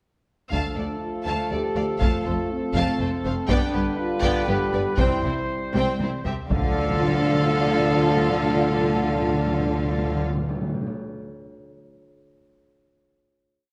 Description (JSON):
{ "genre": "cinematic, epic orchestral film score", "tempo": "121 BPM", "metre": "3/4", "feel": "straight", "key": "D dorian", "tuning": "A4 = 439 Hz", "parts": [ { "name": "warm symphonic violin section", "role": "melody", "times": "0.5-10.2 s", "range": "B4 to A5", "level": "-36 LUFS", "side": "equal", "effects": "none" }, { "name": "warm symphonic violin section", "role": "second line", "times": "0.5-10.2 s", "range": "E4 to F5", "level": "-36 LUFS", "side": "equal", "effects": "none" }, { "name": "rich symphonic viola section", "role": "accompaniment", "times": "0.5-10.2 s", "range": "A3 to F4", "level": "-34 LUFS", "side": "equal", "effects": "none" }, { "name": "mellow French horn section", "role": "sustained chords", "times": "0.5-10.2 s", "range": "C4 to G4", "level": "-32 LUFS", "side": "equal", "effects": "none" }, { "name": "warm trombone section", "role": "sustained chords", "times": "0.5-10.2 s", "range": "C3 to A3", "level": "-34 LUFS", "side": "equal", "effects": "none" }, { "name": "clear trumpet section", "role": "stabs", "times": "0.5-10.2 s", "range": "A4 to C5", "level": "-32 LUFS", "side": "equal", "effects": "none" }, { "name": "rich symphonic cello section", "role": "bass", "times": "0.5-10.2 s", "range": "D2 to D3", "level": "-31 LUFS", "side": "equal", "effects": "none" }, { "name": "rich symphonic double bass section", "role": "bass", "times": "0.5-10.2 s", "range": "F1 to D2", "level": "-32 LUFS", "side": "equal", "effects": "none" }, { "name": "taiko ensemble", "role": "drums", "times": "0.5-7.5 s", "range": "none", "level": "-30 LUFS", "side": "equal", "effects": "none" }, { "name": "timpani", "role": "percussion", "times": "0.5-1.2, 6.5-10.9 s", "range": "D3", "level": "-30 LUFS", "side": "equal", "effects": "none" } ], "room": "moderate scoring stage reverb, RT60 1.8 s", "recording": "none", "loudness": "-23 LUFS", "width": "mono", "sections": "0.5-6.5 theme; 6.5-9.5 final chord", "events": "drum fill 5.7-6.5", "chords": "0.5 Dm; 2.0 F; 3.5 G; 5.0 C; 6.5 Dm" }